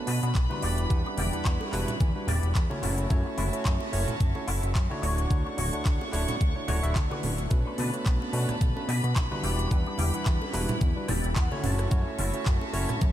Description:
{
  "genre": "nu-disco, nu disco",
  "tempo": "109 BPM",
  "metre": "4/4",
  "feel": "swing 56% on 16ths",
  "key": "unclear",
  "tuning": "A4 = 440 Hz",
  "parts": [
    { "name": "barky tine electric piano", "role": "accompaniment", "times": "0.0-13.0 s", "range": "G3 to F#5", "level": "-34 LUFS", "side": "right 1 dB", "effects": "sidechain pumping, ping-pong delay" },
    { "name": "rich chamber string section", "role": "sustained chords", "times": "0.0-13.1 s", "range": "B3 to C#6", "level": "-37 LUFS", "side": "equal", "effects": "sidechain pumping" },
    { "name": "electric guitar with an envelope filter", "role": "riff", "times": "0.1-12.5 s", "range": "D4 to F#5", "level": "-38 LUFS", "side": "left 2 dB", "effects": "ensemble chorus, ping-pong delay" },
    { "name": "fat analog bass", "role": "bass", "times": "0.1-13.1 s", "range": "D1 to B2", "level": "-29 LUFS", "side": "equal", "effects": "sidechain pumping" },
    { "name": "pop drum kit", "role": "drums", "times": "0.1-13.1 s", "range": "handclaps, hi-hat, rim click", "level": "-36 LUFS", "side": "equal", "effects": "studio reverb" },
    { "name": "electronic kick drum", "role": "drums", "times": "0.4-13.1 s", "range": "none", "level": "-25 LUFS", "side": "equal", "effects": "studio reverb" },
    { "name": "congas and bongos", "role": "percussion", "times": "0.5-13.1 s", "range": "none", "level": "-37 LUFS", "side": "right 2 dB", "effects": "none" }
  ],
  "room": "light reverb, digital ambience",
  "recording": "none",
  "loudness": "-25 LUFS",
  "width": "side -12 dB against mid",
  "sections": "0.0-13.1 A section",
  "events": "clean electric guitar fill 10.8-11.9",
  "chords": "0.0 Bm7; 0.6 Em7; 2.8 F#m7; 5.0 Dmaj7; 7.5 Bm7; 9.4 Em7; 11.6 F#m7"
}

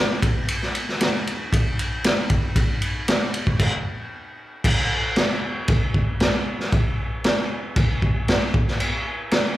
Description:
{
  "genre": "rock",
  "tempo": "116 BPM",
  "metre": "4/4",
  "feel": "straight",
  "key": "none",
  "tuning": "none",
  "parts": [
    { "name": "raw garage drum kit", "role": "drums", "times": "0.2-9.4 s", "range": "crash cymbal, kick drum, ride cymbal, snare drum", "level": "-20 LUFS", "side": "equal", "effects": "none" }
  ],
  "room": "light reverb",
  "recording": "live gig heard through the venue's PA, club reverb",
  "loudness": "-20 LUFS",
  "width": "side -15 dB against mid",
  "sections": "0.0-4.6 A section; 4.6-9.6 B section",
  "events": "stop 3.6-4.6",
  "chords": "none"
}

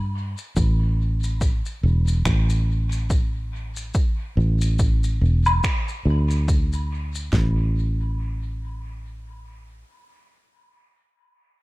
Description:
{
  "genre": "ambient dub",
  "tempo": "71 BPM",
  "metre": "4/4",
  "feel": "swing 58% on 16ths",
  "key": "unclear",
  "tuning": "A4 = 440 Hz",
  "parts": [
    { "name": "fingered electric bass", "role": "bass", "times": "0.0-9.8 s", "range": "E1 to G2", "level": "-21 LUFS", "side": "equal", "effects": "none" },
    { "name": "shaker, finger snaps and woodblock", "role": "drums", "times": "0.4-7.3 s", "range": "none", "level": "-29 LUFS", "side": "left 1 dB", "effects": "dub echo" },
    { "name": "deep house drum kit", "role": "drums", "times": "0.6-7.6 s", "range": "kick drum, snare drum", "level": "-22 LUFS", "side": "equal", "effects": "overdrive" }
  ],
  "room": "little or no reverb",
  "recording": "none",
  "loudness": "-20 LUFS",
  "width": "side -21 dB against mid",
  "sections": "0.0-7.3 A section; 7.3-10.7 B section",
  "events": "none",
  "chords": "none"
}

